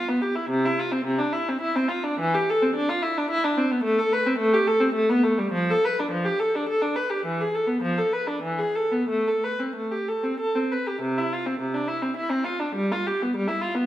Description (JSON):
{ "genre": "classical, baroque-style suite movement for unaccompanied viola", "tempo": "86-110 BPM", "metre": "3/4", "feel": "rubato", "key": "C major, A minor from 3.9 s", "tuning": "A4 = 441 Hz", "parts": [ { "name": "rich viola", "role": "solo", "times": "0.0-13.9 s", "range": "C3 to B4", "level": "-22 LUFS", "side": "equal", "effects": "none" } ], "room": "wet recital hall reverb, RT60 1.4 s", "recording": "none", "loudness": "-22 LUFS", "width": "side -13 dB against mid", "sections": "0.0-11.0 A section; 11.0-13.9 A section", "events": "none", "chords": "none" }